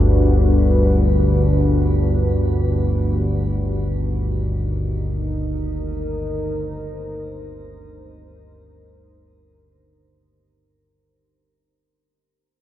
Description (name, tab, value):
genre	dark ambient drone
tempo	free time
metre	none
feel	none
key	unclear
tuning	A4 = 436 Hz
part	deep dark ambient pad	sustained chords	0.0-10.7 s	D4 to C5	-25 LUFS	equal	chorus, built-in reverb, shimmer reverb
part	analog drone	drone	0.0-10.8 s	G1 to D2	-18 LUFS	equal	chorus
room	wet huge ambient reverb, RT60 7.3 s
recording	in a vast, echoing space, cassette tape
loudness	-17 LUFS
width	side -13 dB against mid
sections	0.0-10.7 A section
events	fade-out 0.4-10.7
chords	0.0 G; 2.9 Eb